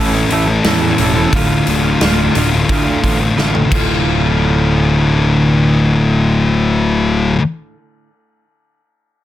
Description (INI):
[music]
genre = quiet-loud alternative rock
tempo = 88 BPM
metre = 4/4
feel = straight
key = D harmonic minor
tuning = A4 = 440 Hz
[part]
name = electric guitar through a small old amp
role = arpeggios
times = 0.0-7.4 s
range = D2 to A4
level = -20 LUFS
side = right 6 dB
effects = tape echo
[part]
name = thick fuzz guitar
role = riff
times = 0.0-7.4 s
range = D2 to A4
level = -14 LUFS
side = left 3 dB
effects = distortion
[part]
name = fuzz picked electric bass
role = bass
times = 0.0-7.4 s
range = D1 to E2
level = -17 LUFS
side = right 1 dB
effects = overdrive
[part]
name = big rock drum kit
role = drums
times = 0.3-3.9 s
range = crash cymbal, hi-hat, kick drum, snare drum, toms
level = -19 LUFS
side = equal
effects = none
[sound]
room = light reverb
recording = dense, heavily limited modern master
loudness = -11 LUFS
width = side -13 dB against mid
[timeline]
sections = 0.0-4.1 A section; 4.1-6.8 B section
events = drum fill 3.4-4.1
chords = 0.0 A; 1.3 Dm